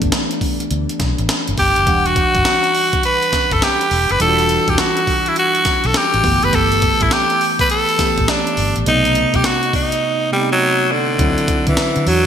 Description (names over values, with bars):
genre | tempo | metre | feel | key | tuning
R&B, new jack swing | 103 BPM | 4/4 | swing 64% on 16ths | E minor | A4 = 441 Hz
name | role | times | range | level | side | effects
tine electric piano | accompaniment | 0.0-12.3 s | C3 to F#5 | -22 LUFS | right 2 dB | shimmer reverb
vintage muted fingered electric bass | bass | 0.0-12.3 s | E1 to D3 | -21 LUFS | equal | none
breakbeat sampler-style drum kit | drums | 0.0-12.2 s | hi-hat, kick drum, snare drum | -20 LUFS | equal | gated reverb
raspy tenor saxophone | melody | 1.6-12.3 s | D3 to B4 | -15 LUFS | equal | shimmer reverb
room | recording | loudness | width
wet lush hall reverb, RT60 1.9 s, digital ambience | bright 1980s-style digital production | -13 LUFS | side -8 dB against mid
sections
0.0-11.2 A section; 11.2-12.3 B section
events
drums muted 10.0-11.2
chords
0.0 G69; 1.9 Em9; 6.2 G69; 8.9 B7b9; 11.2 D9